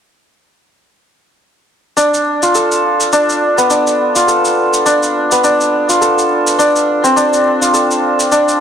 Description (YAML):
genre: organic downtempo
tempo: 104 BPM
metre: 4/4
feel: swing 57% on 16ths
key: unclear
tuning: A4 = 441 Hz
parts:
  - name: santur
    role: arpeggios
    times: 2.0-8.6 s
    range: B3 to A4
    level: -11 LUFS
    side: equal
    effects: low-pass filter, digital delay
  - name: shaker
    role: drums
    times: 2.0-8.6 s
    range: none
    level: -19 LUFS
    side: equal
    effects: none
room: moderate scoring stage reverb, RT60 2.1 s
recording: dense, heavily limited modern master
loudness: -10 LUFS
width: side -8 dB against mid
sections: 2.0-8.6 A section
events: none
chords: 2.0 Bm7b5; 6.6 Dm7